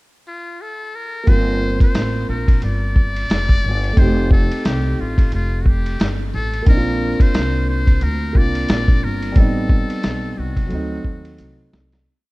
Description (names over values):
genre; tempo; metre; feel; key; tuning
hip hop, jazz-hop; 89 BPM; 4/4; swing 59% on 16ths; G minor; A4 = 436 Hz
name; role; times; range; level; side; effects
trumpet with metal mute; melody; 0.3-11.7 s; F4 to D5; -26 LUFS; left 2 dB; none
dark baby grand piano; accompaniment; 1.2-12.1 s; F#3 to Bb4; -24 LUFS; right 1 dB; none
upright bass; bass; 1.3-12.0 s; F1 to Eb2; -22 LUFS; equal; none
lo-fi sampler-style drum kit; drums; 1.3-12.1 s; hi-hat, kick drum, ride cymbal, snare drum; -15 LUFS; equal; none
room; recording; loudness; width
studio reverb; rough home demo mix; -15 LUFS; side -22 dB against mid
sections
0.0-1.3 pickup bar; 1.3-12.1 head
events
fade-out 9.4-12.1; drum fill 11.4-12.1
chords
0.0 N.C.; 1.3 Gm11; 4.0 F9; 6.7 Bbadd9; 9.4 Am7b5; 10.7 D7b9